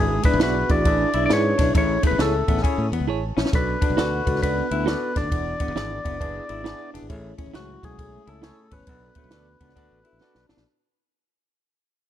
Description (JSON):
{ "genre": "uptempo 1960s-style soul", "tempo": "135 BPM", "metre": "4/4", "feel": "swing 64% on 8ths", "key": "B dorian", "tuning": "A4 = 441 Hz", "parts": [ { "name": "percussive tonewheel organ", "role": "melody", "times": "0.0-10.5 s", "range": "F#4 to D5", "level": "-26 LUFS", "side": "left 2 dB", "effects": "overdrive" }, { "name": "vibraphone with soft mallets", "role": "second line", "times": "0.0-10.5 s", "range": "F#3 to D4", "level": "-34 LUFS", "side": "right 8 dB", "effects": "none" }, { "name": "tine electric piano", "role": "accompaniment", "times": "0.0-10.6 s", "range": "G#2 to A5", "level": "-29 LUFS", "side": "left 2 dB", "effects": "phaser" }, { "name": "modern bright fingered electric bass", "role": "bass", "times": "0.0-10.6 s", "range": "E1 to A2", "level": "-27 LUFS", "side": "equal", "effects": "none" }, { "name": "electric guitar through a small old amp", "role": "riff", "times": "0.2-10.6 s", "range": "A3 to F#4", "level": "-31 LUFS", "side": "left 8 dB", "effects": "none" }, { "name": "compact cocktail drum kit", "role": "drums", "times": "0.2-10.6 s", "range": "kick drum, ride cymbal, snare drum", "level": "-23 LUFS", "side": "equal", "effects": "none" }, { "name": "clean electric guitar", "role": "stabs", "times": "0.4-10.4 s", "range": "E4 to D5", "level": "-30 LUFS", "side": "right 11 dB", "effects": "tremolo" } ], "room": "light reverb, studio ambience", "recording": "dark, warm production", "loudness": "-20 LUFS", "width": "side -11 dB against mid", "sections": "0.0-10.7 A section", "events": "fade-out 0.0-10.7; tine electric piano fill 2.9-3.5, 10.0-10.7; drum fill 3.1-3.5, 10.2-10.7", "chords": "0.0 E7/G#; 1.7 Amaj7; 3.5 Bm7; 5.3 E7; 7.1 Amaj7; 8.9 Bm7" }